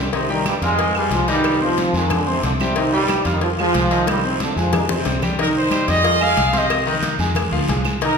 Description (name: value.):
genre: latin, salsa.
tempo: 182 BPM.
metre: 4/4.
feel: straight.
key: C minor.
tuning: A4 = 440 Hz.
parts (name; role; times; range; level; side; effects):
clear concert grand piano; accompaniment; 0.0-8.2 s; Eb3 to F6; -22 LUFS; left 2 dB; none.
fingered electric bass; bass; 0.0-8.2 s; C2 to F2; -24 LUFS; right 1 dB; none.
brilliant trombone section; melody; 0.1-5.2 s; G2 to F4; -20 LUFS; right 1 dB; none.
congas; percussion; 0.1-8.2 s; none; -29 LUFS; left 1 dB; none.
cowbell and bongos; percussion; 0.1-8.2 s; none; -27 LUFS; left 4 dB; none.
guiro; percussion; 0.1-8.2 s; none; -30 LUFS; right 3 dB; none.
claves; percussion; 0.5-8.0 s; none; -33 LUFS; right 5 dB; none.
bright trumpet section; melody; 5.4-8.2 s; Eb4 to F5; -19 LUFS; right 1 dB; none.
room: wet recital hall reverb, RT60 1.6 s.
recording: recorded in a church or concert hall.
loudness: -16 LUFS.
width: side -5 dB against mid.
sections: 0.0-5.4 A section; 5.4-8.2 B section.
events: drum fill 4.1-5.4.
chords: 0.1 Cm; 2.1 Fm; 2.8 Cm; 3.4 Fm; 4.7 Cm; 6.0 Fm; 6.7 Cm; 7.4 Fm.